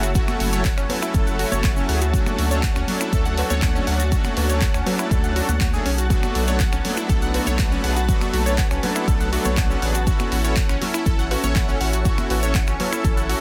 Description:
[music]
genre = progressive house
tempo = 121 BPM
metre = 4/4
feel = straight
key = unclear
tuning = A4 = 441 Hz
[part]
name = shimmering ambient pad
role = sustained chords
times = 0.0-13.4 s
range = F#4 to C#6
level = -34 LUFS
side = equal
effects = chorus, built-in reverb, sidechain pumping
[part]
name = unison pluck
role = arpeggios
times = 0.0-13.3 s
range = F#3 to F#5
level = -29 LUFS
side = equal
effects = phaser, sidechain pumping, tape echo
[part]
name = saturated sub bass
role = bass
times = 0.0-13.3 s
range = F#1 to D2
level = -26 LUFS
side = equal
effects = sidechain pumping
[part]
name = deep house drum kit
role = drums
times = 0.0-13.4 s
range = finger snaps, handclaps, hi-hat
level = -32 LUFS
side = equal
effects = sidechain pumping on hats, sidechain pumping on cymbals
[part]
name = egg shaker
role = percussion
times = 0.0-13.3 s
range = none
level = -38 LUFS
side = equal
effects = none
[part]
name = soft supersaw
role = stabs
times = 0.2-13.4 s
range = F#3 to A4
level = -29 LUFS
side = equal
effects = sidechain pumping, tape echo
[part]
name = electronic kick drum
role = drums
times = 0.2-13.1 s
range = none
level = -24 LUFS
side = equal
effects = none
[part]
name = congas and cowbell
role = percussion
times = 0.3-12.9 s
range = none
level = -35 LUFS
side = equal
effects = sidechain pumping on perc
[sound]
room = light reverb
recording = dense, heavily limited modern master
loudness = -21 LUFS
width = mono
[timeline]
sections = 0.0-13.4 A section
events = none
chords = 0.0 F#m7; 2.1 Dmaj7; 6.1 Bm7; 10.1 A

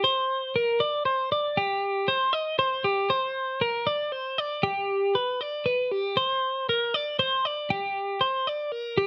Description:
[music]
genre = rock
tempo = 78 BPM (dotted quarters)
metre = 6/8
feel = straight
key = C minor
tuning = A4 = 445 Hz
[part]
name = twelve-string electric guitar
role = solo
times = 0.0-9.1 s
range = G4 to Eb5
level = -26 LUFS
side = equal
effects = vibrato effect
[sound]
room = light reverb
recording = none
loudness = -26 LUFS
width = mono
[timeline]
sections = 0.0-7.7 A section; 7.7-9.1 B section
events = none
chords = none

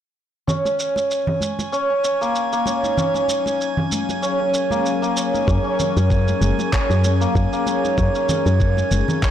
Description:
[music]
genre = organic downtempo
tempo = 96 BPM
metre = 4/4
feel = swing 56% on 16ths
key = unclear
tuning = A4 = 440 Hz
[part]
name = santur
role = arpeggios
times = 0.5-9.3 s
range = A#3 to D#4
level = -21 LUFS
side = right 1 dB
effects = low-pass filter, tape echo
[part]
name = electronic shaker and handclaps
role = drums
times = 0.5-9.3 s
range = none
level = -30 LUFS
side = right 2 dB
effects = none
[part]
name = congas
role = percussion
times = 0.5-9.2 s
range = none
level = -26 LUFS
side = right 1 dB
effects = none
[part]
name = drifting glass-harmonics texture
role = texture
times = 0.9-9.3 s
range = G#5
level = -31 LUFS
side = right 3 dB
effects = chorus, built-in reverb
[part]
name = warbly tape-like pad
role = sustained chords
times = 3.0-9.3 s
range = F#3 to A#4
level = -25 LUFS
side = left 4 dB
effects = chorus, built-in reverb, vintage 12-bit sampler grit, sidechain pumping
[part]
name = woody FM bass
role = bass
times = 5.5-9.0 s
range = F#1 to F#2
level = -18 LUFS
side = equal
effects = transformer saturation
[part]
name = electronic kick drum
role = drums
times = 5.5-9.3 s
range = none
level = -21 LUFS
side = equal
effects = none
[sound]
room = light reverb, digital ambience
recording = blown-out, overdriven recording, overdrive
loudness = -17 LUFS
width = side -10 dB against mid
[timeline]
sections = 0.5-5.5 A section; 5.5-9.3 B section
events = filter sweep on santur 0.5-5.5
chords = 0.5 F#add9

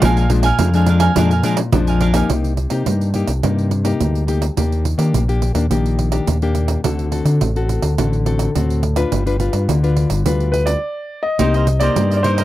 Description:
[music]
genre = samba and choro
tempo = 106 BPM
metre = 4/4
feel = straight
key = C minor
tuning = A4 = 442 Hz
[part]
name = clear baby grand piano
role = melody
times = 0.0-0.3, 10.5-12.4 s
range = B4 to F5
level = -20 LUFS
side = left 1 dB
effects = none
[part]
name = cavaquinho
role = accompaniment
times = 0.0-2.3, 11.4-12.4 s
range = D4 to Ab5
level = -21 LUFS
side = right 5 dB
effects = none
[part]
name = nylon-string guitar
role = accompaniment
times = 0.0-12.4 s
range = F2 to B4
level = -20 LUFS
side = left 4 dB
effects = none
[part]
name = overdriven fingered electric bass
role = bass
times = 0.0-12.4 s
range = G1 to Eb3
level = -17 LUFS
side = equal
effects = none
[part]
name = pandeiro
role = percussion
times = 0.0-12.4 s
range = none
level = -22 LUFS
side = right 6 dB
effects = none
[sound]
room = light reverb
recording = dry, close 1970s-style studio recording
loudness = -15 LUFS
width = side -15 dB against mid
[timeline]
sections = 0.0-2.3 A section; 2.3-11.4 B section; 11.4-12.4 C section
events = stop 10.8-11.4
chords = 0.0 Bb7; 2.3 Cm7; 4.6 Ebmaj7; 6.8 D7; 9.1 G7; 11.4 Cm7

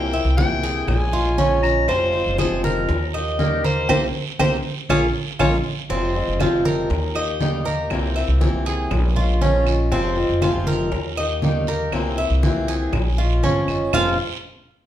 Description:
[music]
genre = latin, Cuban son and guajira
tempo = 120 BPM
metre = 4/4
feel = straight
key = F minor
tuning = A4 = 438 Hz
[part]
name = bright clarinet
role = melody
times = 0.0-5.5 s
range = Bb4 to Bb5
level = -24 LUFS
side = left 2 dB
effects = plate reverb
[part]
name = picked swing-style acoustic guitar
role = accompaniment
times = 0.0-14.1 s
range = F2 to G4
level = -26 LUFS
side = left 2 dB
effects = none
[part]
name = Cuban tres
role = arpeggios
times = 0.0-14.2 s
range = C4 to F5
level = -24 LUFS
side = right 2 dB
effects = none
[part]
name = upright bass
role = bass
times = 0.0-14.2 s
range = F1 to Eb2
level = -23 LUFS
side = equal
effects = none
[part]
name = bongos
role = percussion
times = 0.1-14.1 s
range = none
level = -30 LUFS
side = left 4 dB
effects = none
[part]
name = congas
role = percussion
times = 0.1-14.1 s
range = none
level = -26 LUFS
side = right 1 dB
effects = none
[part]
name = guiro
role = percussion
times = 0.4-14.1 s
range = none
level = -35 LUFS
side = right 8 dB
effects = none
[part]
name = claves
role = percussion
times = 0.9-14.0 s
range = none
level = -33 LUFS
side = right 7 dB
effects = none
[sound]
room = wet large studio reverb, RT60 0.9 s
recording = heard from further back in the room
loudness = -18 LUFS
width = side -11 dB against mid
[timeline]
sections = 0.0-5.9 A section; 5.9-13.9 B section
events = band accent 3.9-5.9; drum fill 4.9-5.9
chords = 0.0 C7; 0.9 Bbm7; 1.9 Fm; 2.9 Eb; 3.9 C7; 4.9 Bbm7; 5.9 Fm; 6.9 Eb; 7.9 C7; 8.9 Bbm7; 9.9 Fm; 10.9 Eb; 11.9 C7; 12.9 Bbm7; 13.9 Fm

